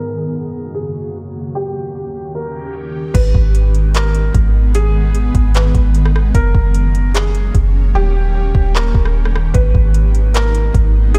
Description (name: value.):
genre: hip hop, atmospheric cloud-rap.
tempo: 150 BPM.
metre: 4/4.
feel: half-time.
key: G# minor.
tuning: A4 = 440 Hz.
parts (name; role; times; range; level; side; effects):
felt-muted upright piano; melody; 0.0-11.2 s; G4 to B4; -27 LUFS; equal; analog delay.
ethereal airy pad; sustained chords; 0.0-11.2 s; D#2 to G4; -26 LUFS; equal; ensemble chorus, built-in reverb, tremolo, sidechain pumping.
soft 808-style bass; bass; 3.1-11.2 s; D#1 to G#1; -15 LUFS; equal; none.
smooth R&B drum kit; drums; 3.1-11.2 s; crash cymbal, handclaps, hi-hat, kick drum, rim click; -19 LUFS; equal; overdrive.
room: light reverb.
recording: low-pass filter.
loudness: -15 LUFS.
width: mono.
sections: 0.0-3.1 A section; 3.1-11.2 B section.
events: filter sweep 0.0-3.1; hi-hats muted 7.9-9.5.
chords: 0.0 F#; 1.5 D#7; 3.1 G#m; 6.3 F#; 7.9 D#7; 9.5 G#m.